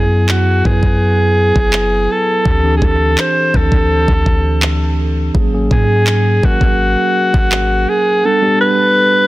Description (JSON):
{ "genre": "contemporary R&B", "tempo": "83 BPM", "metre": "4/4", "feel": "straight", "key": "unclear", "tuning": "A4 = 443 Hz", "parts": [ { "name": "clear alto saxophone", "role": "melody", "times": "0.0-9.3 s", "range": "F#4 to C5", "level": "-14 LUFS", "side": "equal", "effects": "tape echo" }, { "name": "mellow tine electric piano", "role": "accompaniment", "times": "0.0-9.3 s", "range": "E3 to B4", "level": "-19 LUFS", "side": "right 1 dB", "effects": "slow stereo tremolo" }, { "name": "soft 808-style bass", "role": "bass", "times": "0.0-7.9 s", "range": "F#1 to G#2", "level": "-15 LUFS", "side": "equal", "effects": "none" }, { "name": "smooth R&B drum kit", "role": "drums", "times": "0.3-7.7 s", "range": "handclaps, kick drum", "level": "-16 LUFS", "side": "equal", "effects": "none" } ], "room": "digital ambience", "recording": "dense, heavily limited modern master", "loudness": "-11 LUFS", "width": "side -17 dB against mid", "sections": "0.0-9.3 A section", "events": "none", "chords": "0.0 F#9sus4; 2.5 D9sus4; 5.3 G#9sus4; 8.2 A9sus4" }